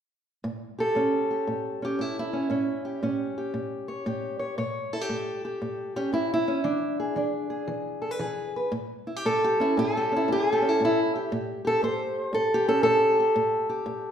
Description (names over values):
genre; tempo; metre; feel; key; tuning
acoustic country blues, solo or duo; 116 BPM; 4/4; swing 66% on 8ths; A mixolydian; A4 = 440 Hz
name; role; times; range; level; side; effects
fingerpicked old ladder-braced acoustic guitar; solo; 0.4-14.1 s; A2 to C#5; -24 LUFS; equal; none
room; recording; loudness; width
wet recital hall reverb, RT60 1.2 s; recorded in a church or concert hall; -24 LUFS; side -8 dB against mid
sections
0.4-8.7 A section; 8.7-14.1 B section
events
none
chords
0.4 A7; 6.6 E7; 8.7 A7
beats
| 0.44 0.96 1.47 1.99 | 2.51 3.03 3.54 4.06 | 4.58 5.10 5.61 6.13 | 6.65 7.17 7.68 8.20 | 8.72 9.23 9.75 10.27 | 10.78 11.30 11.81 12.33 | 12.85 13.36 13.88